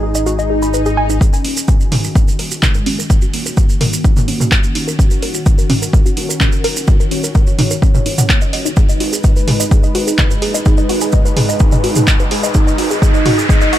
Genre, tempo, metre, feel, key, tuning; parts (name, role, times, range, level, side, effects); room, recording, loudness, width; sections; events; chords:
melodic techno; 127 BPM; 4/4; straight; Eb minor; A4 = 440 Hz
wide unison lead; melody; 0.0-13.8 s; Ab3 to Db5; -23 LUFS; right 2 dB; analog chorus, sidechain pumping, ping-pong delay
warm analog pad; sustained chords; 0.0-13.8 s; Eb3 to Cb5; -24 LUFS; left 1 dB; chorus, sidechain pumping
tight sequenced synth; arpeggios; 0.0-13.8 s; Bb3 to Cb6; -22 LUFS; left 1 dB; chorus, sidechain pumping, ping-pong delay
dark detuned saw bass; bass; 0.0-13.8 s; Eb1 to Ab2; -24 LUFS; equal; tube saturation, sidechain pumping, high-pass filter
maracas; percussion; 0.1-13.7 s; -23 LUFS; right 6 dB
swell and riser; sound effects; 0.4-1.2, 10.6-13.8 s; -24 LUFS; left 1 dB
electronic kick drum; drums; 1.2-13.6 s; -12 LUFS; equal
punchy analog drum machine; drums; 1.4-13.8 s; handclaps, hi-hat, toms; -18 LUFS; right 1 dB; sidechain pumping on hats, sidechain pumping on toms
little or no reverb; -11 LUFS; side -12 dB against mid
0.0-1.2 A section; 1.2-13.8 B section
filter sweep on synth arpeggio sound 0.0-1.2; swell 0.4-1.2; build-up 1.2-13.8; filter sweep on analog synth lead 1.2-13.8; filter sweep on analog synth pad 1.2-13.8; riser 10.6-13.8
0.0 Abm; 1.2 Ebm7; 8.8 Abm